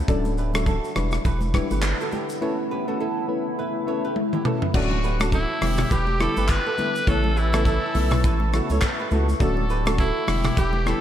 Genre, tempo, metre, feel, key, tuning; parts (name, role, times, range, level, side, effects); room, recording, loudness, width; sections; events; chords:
afrobeats; 103 BPM; 4/4; swing 58% on 16ths; A4 = 441 Hz
deep dark ambient pad; sustained chords; 0.0-11.0 s; C#3 to D6; -32 LUFS; equal; chorus, built-in reverb
saturated sub bass; bass; 0.0-10.9 s; D1 to C#2; -24 LUFS; equal
mellow FM electric piano; accompaniment; 0.1-11.0 s; C#3 to B4; -29 LUFS; left 3 dB; chorus
flamenco guitar; riff; 0.1-11.0 s; E4 to D5; -31 LUFS; right 5 dB; lush chorus, tape echo
tight funk drum kit; drums; 0.1-11.0 s; crash cymbal, handclaps, hi-hat, kick drum, rim click, shaker, toms; -25 LUFS; equal
congas; percussion; 0.3-10.8 s; -35 LUFS; right 2 dB
clear horn section; second line; 4.7-11.0 s; D3 to A4; -32 LUFS; left 1 dB
raspy alto saxophone; melody; 5.3-11.0 s; E4 to B4; -27 LUFS; equal; tape echo
moderate lush hall reverb, RT60 2.9 s; dreamy mix soaked in reverb; -20 LUFS; side -10 dB against mid
0.0-4.7 A section; 4.7-11.0 B section
drum fill 4.2-4.7
0.1 Dmaj7; 1.0 Em7; 2.4 Aadd9; 4.7 Dmaj7; 5.6 Em7; 7.1 Aadd9; 9.4 Dmaj7; 10.3 Em7